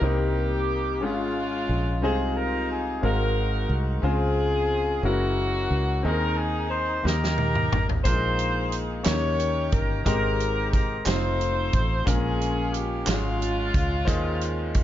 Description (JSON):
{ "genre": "slow gospel", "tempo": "60 BPM (dotted quarters)", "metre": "6/8", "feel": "straight", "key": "Ab major", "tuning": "A4 = 444 Hz", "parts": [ { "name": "mellow saxophone section", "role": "melody", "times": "0.0-14.8 s", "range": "Ab3 to Db5", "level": "-27 LUFS", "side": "left 1 dB", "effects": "none" }, { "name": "bright upright piano", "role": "accompaniment", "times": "0.0-14.8 s", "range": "Ab2 to F5", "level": "-29 LUFS", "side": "left 2 dB", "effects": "none" }, { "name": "fingered electric bass", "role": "bass", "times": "0.0-14.8 s", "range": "F1 to Eb2", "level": "-27 LUFS", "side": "equal", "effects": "none" }, { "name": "natural country drum kit", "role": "drums", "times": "7.1-14.8 s", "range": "hi-hat, kick drum, snare drum, toms", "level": "-26 LUFS", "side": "right 1 dB", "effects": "none" }, { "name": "group handclap", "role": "percussion", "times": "9.1-13.4 s", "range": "none", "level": "-34 LUFS", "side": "right 6 dB", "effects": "none" } ], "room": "light reverb, studio reverb", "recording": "nothing above 7.5 kHz", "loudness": "-22 LUFS", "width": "side -12 dB against mid", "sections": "0.0-14.8 A section", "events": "drum fill 7.1-8.1", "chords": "0.0 Cm7; 1.0 Db/Ab; 2.0 Ab6/C; 3.0 Ab13; 4.0 Dbmaj7; 5.0 Gb9; 6.0 Ab/Eb; 7.1 Eb; 8.1 Bb7sus4; 9.1 Eb7; 10.1 Abmaj7; 11.1 F7; 12.1 Bbm7; 13.1 Db/Ab; 14.1 Ab/Eb" }